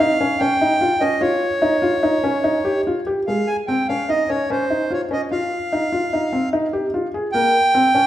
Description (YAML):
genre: contemporary instrumental, contemporary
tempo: 148 BPM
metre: 5/4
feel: straight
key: Db lydian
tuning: A4 = 441 Hz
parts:
  - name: accordion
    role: melody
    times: 0.0-8.1 s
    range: C5 to Ab5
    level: -20 LUFS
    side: right 1 dB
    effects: none
  - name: felt-muted upright piano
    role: arpeggios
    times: 0.0-8.1 s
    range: Ab3 to Ab4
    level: -20 LUFS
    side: left 1 dB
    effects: none
room: wet recital hall reverb, RT60 1.6 s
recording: none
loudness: -17 LUFS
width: side -12 dB against mid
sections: 0.0-3.3 A section; 3.3-8.1 B section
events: none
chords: 0.0 Eb7; 3.3 Dbmaj7; 5.3 F7(no3); 7.3 Eb (rootless)